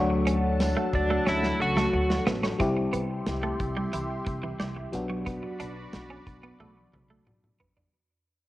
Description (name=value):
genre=1980s-style pop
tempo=90 BPM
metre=4/4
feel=straight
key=unclear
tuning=A4 = 439 Hz
part: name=FM electric piano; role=accompaniment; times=0.0-8.0 s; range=F#3 to C#5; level=-29 LUFS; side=left 2 dB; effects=chorus, cassette tape
part: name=phased analog pad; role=sustained chords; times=0.0-7.9 s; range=F#4 to C6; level=-37 LUFS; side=right 2 dB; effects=phaser, chorus, cassette tape
part: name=twelve-string electric guitar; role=riff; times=0.0-7.9 s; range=E3 to D4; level=-34 LUFS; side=right 3 dB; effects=wide subtle chorus, cassette tape, analog delay
part: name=upright bass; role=bass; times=0.0-7.8 s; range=A1 to D2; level=-32 LUFS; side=equal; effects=none
part: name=modern studio drum kit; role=drums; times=0.3-7.9 s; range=hi-hat, kick drum, snare drum, tambourine, toms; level=-32 LUFS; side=equal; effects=none
part: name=twelve-string electric guitar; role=melody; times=0.9-2.2 s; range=D4 to F#4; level=-29 LUFS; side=right 1 dB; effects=cassette tape
room=moderate spring reverb, RT60 2.5 s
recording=home recording on cassette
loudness=-25 LUFS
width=side -16 dB against mid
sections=0.0-2.6 A section; 2.6-7.9 B section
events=drum fill 1.3-2.6, 6.6-7.9; fade-out 2.6-7.9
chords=0.0 Dmaj7; 2.6 C; 4.9 Bm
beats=0.60 1.27 1.93 | 2.60 3.27 3.93 4.60 | 5.27 5.93 6.60 7.27